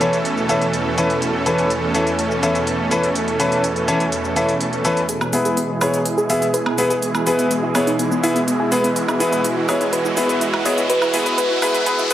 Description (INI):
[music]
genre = progressive house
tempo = 124 BPM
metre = 4/4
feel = straight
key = E major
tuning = A4 = 443 Hz
[part]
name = supersaw pad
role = sustained chords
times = 0.0-12.1 s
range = E2 to A4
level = -21 LUFS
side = right 2 dB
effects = low-pass filter
[part]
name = bright concert grand piano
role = stabs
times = 0.0-12.1 s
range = E3 to E5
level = -20 LUFS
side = left 1 dB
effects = low-pass filter, dub echo
[part]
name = electronic hi-hat, shaker and woodblock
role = drums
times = 0.0-12.1 s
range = none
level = -26 LUFS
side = right 1 dB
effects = overdrive, low-pass filter on hats, low-pass filter on perc, low-pass filter on room
[part]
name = soft round pluck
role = arpeggios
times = 5.1-12.1 s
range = B3 to D#5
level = -22 LUFS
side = equal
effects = chorus, dub echo
[part]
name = riser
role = sound effects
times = 8.1-12.1 s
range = none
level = -28 LUFS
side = right 1 dB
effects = none
[sound]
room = moderate lush hall reverb, RT60 1.7 s, digital ambience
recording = heavily compressed radio sound, high-pass filter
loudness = -16 LUFS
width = side -12 dB against mid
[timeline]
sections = 0.0-5.1 A section; 5.1-12.1 B section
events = build-up 5.1-12.1; filter sweep on synth pluck 5.1-12.1; filter sweep on grand piano 5.1-12.1; filter sweep on supersaw synth 5.1-12.1; filter sweep 5.1-12.1; riser 8.1-12.1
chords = 0.0 Aadd9/E; 5.1 E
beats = 0.25 0.73 | 1.22 1.70 2.19 2.67 | 3.15 3.64 4.12 4.61 | 5.09 5.57 6.06 6.54 | 7.02 7.51 7.99 8.48 | 8.96 9.44 9.93 10.41 | 10.89 11.38 11.86